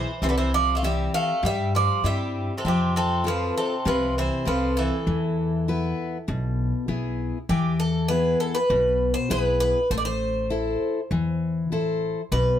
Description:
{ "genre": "greek folk, Greek bouzouki band", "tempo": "99 BPM", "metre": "4/4", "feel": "straight", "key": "A minor", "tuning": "A4 = 440 Hz", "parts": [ { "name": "Greek bouzouki", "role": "melody", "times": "0.0-12.6 s", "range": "G4 to F5", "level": "-26 LUFS", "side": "right 1 dB", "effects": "none" }, { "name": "Greek bouzouki", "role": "second line", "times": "0.0-6.9 s", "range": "C3 to A3", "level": "-29 LUFS", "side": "equal", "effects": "none" }, { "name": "picked steel-string acoustic guitar", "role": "accompaniment", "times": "0.0-12.6 s", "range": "B2 to F5", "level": "-26 LUFS", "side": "left 3 dB", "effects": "none" }, { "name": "upright bass", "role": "bass", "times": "0.0-12.6 s", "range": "A1 to G2", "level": "-28 LUFS", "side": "equal", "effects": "none" } ], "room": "moderate studio reverb, RT60 0.6 s", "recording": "none", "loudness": "-22 LUFS", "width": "side -10 dB against mid", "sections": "0.0-7.5 A section; 7.5-12.6 A section", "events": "none", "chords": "0.2 C; 2.6 F; 5.1 E; 9.9 Am" }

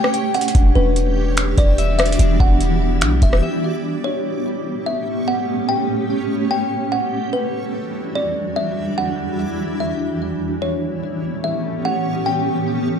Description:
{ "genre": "hip hop, atmospheric cloud-rap", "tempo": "146 BPM", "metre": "4/4", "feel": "half-time", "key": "unclear", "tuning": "A4 = 439 Hz", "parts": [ { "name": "kalimba", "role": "melody", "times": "0.0-13.0 s", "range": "B4 to G5", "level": "-24 LUFS", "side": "left 2 dB", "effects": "low-pass filter, ping-pong delay" }, { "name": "granular cloud pad", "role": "sustained chords", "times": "0.0-13.0 s", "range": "E2 to G4", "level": "-22 LUFS", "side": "right 2 dB", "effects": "built-in reverb, sidechain pumping" }, { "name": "electric guitar at the edge of break-up", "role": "arpeggios", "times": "0.0-3.8 s", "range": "C#4 to G5", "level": "-28 LUFS", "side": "left 8 dB", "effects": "low-pass filter, ping-pong delay" }, { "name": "booming analog drum machine", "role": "drums", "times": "0.0-3.4 s", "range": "finger snaps, hi-hat, kick drum, rim click", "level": "-17 LUFS", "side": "equal", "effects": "overdrive, vintage 12-bit sampler grit" }, { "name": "backwards swelling texture", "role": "texture", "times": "0.0-13.0 s", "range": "G3 to D5", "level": "-31 LUFS", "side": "right 1 dB", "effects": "built-in reverb" }, { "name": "clean 808-style bass", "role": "bass", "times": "0.5-3.4 s", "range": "E1 to B1", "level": "-18 LUFS", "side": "equal", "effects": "none" } ], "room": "light reverb", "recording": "none", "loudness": "-17 LUFS", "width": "side -8 dB against mid", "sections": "0.0-3.8 A section; 3.8-13.0 B section", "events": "break 3.4-3.8", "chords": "0.0 A7; 0.5 Em7; 3.8 A7; 7.1 Em7; 10.4 A7" }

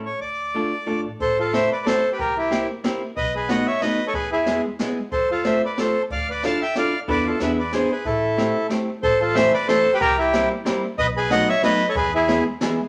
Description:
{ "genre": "musette waltz", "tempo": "184 BPM", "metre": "3/4", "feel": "swing 55% on 8ths", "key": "A minor", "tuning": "A4 = 439 Hz", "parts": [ { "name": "archtop guitar, miked and amplified", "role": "accompaniment", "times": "0.0-12.8 s", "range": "E3 to A4", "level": "-26 LUFS", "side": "equal", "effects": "none" }, { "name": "upright bass", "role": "bass", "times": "0.0-12.4 s", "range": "G1 to F2", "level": "-36 LUFS", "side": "equal", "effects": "none" }, { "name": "accordion", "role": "melody", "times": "0.1-12.4 s", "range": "E4 to A5", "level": "-22 LUFS", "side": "equal", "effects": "none" }, { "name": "jazz brush drum kit", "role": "drums", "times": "1.2-12.7 s", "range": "hi-hat, kick drum, snare drum", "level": "-33 LUFS", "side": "equal", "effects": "none" } ], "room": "wet studio reverb, RT60 0.8 s", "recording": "none", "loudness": "-21 LUFS", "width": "mono", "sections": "0.0-1.2 A section; 1.2-9.0 B section; 9.0-12.9 B section", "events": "none", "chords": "0.2 Dm; 1.2 Am; 2.2 C7; 3.2 B7; 4.1 E; 5.1 F; 6.1 Dmadd9; 7.1 E7sus4; 7.4 E7; 8.1 Am7; 9.0 Am; 10.0 C7; 11.0 B7; 11.9 E" }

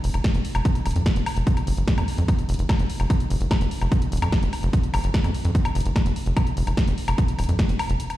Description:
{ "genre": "psychedelic trance", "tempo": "147 BPM", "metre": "4/4", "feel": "straight", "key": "unclear", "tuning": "A4 = 440 Hz", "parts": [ { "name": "tight sequencer bass", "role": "bass", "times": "0.0-8.0 s", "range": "Eb1 to F2", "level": "-22 LUFS", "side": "equal", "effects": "none" }, { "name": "techno drum kit", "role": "drums", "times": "0.0-8.2 s", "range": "hi-hat, snare drum, woodblock", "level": "-28 LUFS", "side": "left 1 dB", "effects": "overdrive" }, { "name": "electronic kick drum", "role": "drums", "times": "0.2-7.7 s", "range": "none", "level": "-22 LUFS", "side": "equal", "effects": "overdrive" } ], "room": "light reverb, digital ambience", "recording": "played on a big sound system in a bare room, large studio reverb", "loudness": "-20 LUFS", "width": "side -15 dB against mid", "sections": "0.0-8.2 A section", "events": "break 8.0", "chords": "none" }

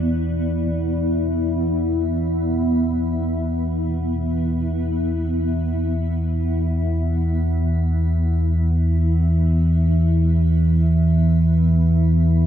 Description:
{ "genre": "dark ambient drone", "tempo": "free time", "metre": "none", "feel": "none", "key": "unclear", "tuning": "A4 = 438 Hz", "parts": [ { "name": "granular cloud pad", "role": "sustained chords", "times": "0.0-12.5 s", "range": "B3 to E5", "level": "-24 LUFS", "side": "equal", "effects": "built-in reverb" }, { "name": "deep rumbling drone", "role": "drone", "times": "0.0-12.5 s", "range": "E2 to E3", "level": "-18 LUFS", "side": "equal", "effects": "built-in reverb, wide subtle chorus" } ], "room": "moderate spring reverb, RT60 2.8 s", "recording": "cassette tape", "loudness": "-18 LUFS", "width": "side -10 dB against mid", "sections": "0.0-12.5 A section", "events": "fade-out on ambient pad 0.0-12.5", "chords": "0.0 E5" }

